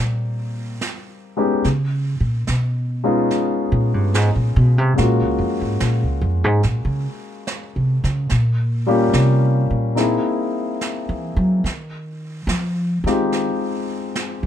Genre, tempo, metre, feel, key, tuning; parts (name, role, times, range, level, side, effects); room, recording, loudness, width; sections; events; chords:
jazz ballad; 72 BPM; 4/4; swing 69% on 8ths; A4 = 440 Hz
warm concert grand piano; accompaniment; 0.0-14.5 s; G3 to G#4; -21 LUFS; left 3 dB
upright bass; bass; 0.0-14.5 s; Db2 to Gb3; -18 LUFS; right 1 dB
snare drum and brushed snare drum; drums; 0.8-14.5 s; -30 LUFS; right 4 dB
little or no reverb; -17 LUFS; side -10 dB against mid
0.0-14.5 A section
upright bass solo 0.0-14.5
0.0 Cm7; 1.6 Db9; 5.0 Gbmaj7; 8.3 Gm7b5; 10.0 C7alt; 11.7 Fm9